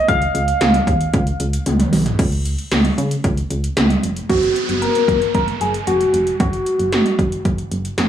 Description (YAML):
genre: synth-pop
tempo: 114 BPM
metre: 4/4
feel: straight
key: unclear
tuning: A4 = 444 Hz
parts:
  - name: soft struck synth lead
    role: melody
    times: 0.0-7.4 s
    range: F#4 to E#5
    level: -18 LUFS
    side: equal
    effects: chorus, phaser, slapback echo
  - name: solid FM bass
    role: bass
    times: 0.1-8.1 s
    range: E#1 to C#3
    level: -21 LUFS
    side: equal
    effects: none
  - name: 80s electronic pad drums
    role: drums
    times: 0.1-8.1 s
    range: crash cymbal, hi-hat, kick drum, snare drum, toms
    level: -19 LUFS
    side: equal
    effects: gated reverb on snare and toms, overdrive, gated reverb
  - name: downlifter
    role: sound effects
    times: 4.3-8.1 s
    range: none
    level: -26 LUFS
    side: right 1 dB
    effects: none
room: light reverb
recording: small room ambience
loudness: -15 LUFS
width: side -10 dB against mid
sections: 0.0-2.2 A section; 2.2-4.3 B section; 4.3-8.1 C section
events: drum fill 1.7-2.2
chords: 0.1 C#; 2.2 N.C.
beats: | 0.08 0.61 1.14 1.66 | 2.19 2.72 3.24 3.77 | 4.29 4.82 5.35 5.87 | 6.40 6.93 7.45 7.98